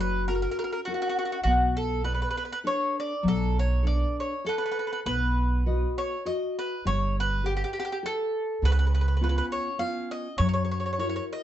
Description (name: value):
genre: italian folk, Italian serenade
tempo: 101 BPM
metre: 3/4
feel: swing 53% on 8ths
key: B minor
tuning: A4 = 439 Hz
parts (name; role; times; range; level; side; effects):
- mandolin; melody; 0.0-11.4 s; F#4 to E#5; -29 LUFS; equal; none
- nylon-string guitar; accompaniment; 0.0-11.4 s; C#3 to D#5; -32 LUFS; left 3 dB; none
- upright bass; bass; 0.0-11.2 s; F#1 to F#2; -26 LUFS; right 1 dB; none
room: wet studio reverb, RT60 0.5 s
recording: heard from further back in the room, nothing above 8.0 kHz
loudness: -25 LUFS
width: side -11 dB against mid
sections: 0.0-5.1 A section; 5.1-11.4 B section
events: none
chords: 0.0 F#; 1.5 Bm7; 5.1 B; 6.9 Gadd9; 8.6 C#7; 10.4 F#7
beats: 0.28 0.87 | 1.46 2.05 2.65 | 3.24 3.84 4.45 | 5.06 5.66 6.26 | 6.85 7.44 8.03 | 8.62 9.21 9.80 | 10.40 11.00